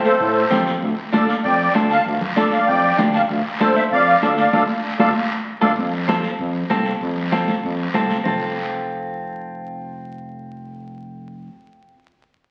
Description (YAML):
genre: latin, cumbia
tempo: 194 BPM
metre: 4/4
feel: straight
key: F major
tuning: A4 = 440 Hz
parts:
  - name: clean electric guitar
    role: accompaniment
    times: 0.0-12.0 s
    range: C4 to A4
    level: -27 LUFS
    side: equal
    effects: none
  - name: guiro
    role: percussion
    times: 0.0-8.3 s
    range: none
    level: -32 LUFS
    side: equal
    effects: none
  - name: musette accordion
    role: melody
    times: 0.1-5.7 s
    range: A4 to A5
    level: -20 LUFS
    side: equal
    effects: none
  - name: growling FM bass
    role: bass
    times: 0.2-11.5 s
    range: F1 to A2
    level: -28 LUFS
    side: equal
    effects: none
  - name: congas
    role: percussion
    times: 0.2-8.3 s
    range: none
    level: -26 LUFS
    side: equal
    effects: none
room: wet large studio reverb, RT60 1.3 s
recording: very old 78 rpm record, vinyl crackle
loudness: -19 LUFS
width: mono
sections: 0.0-5.8 A section; 5.8-8.3 B section; 8.3-10.7 C section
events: band accent 4.5-5.8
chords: 0.0 F; 0.8 Dm; 5.8 F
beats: 0.20 0.51 | 0.82 1.13 1.44 1.75 | 2.06 2.37 2.68 2.98 | 3.29 3.60 3.91 4.22 | 4.53 4.84 5.15 5.46 | 5.77 6.08 6.39 6.70 | 7.01 7.32 7.63 7.95 | 8.26 8.57 8.88 9.19 | 9.50 9.81 10.12 10.43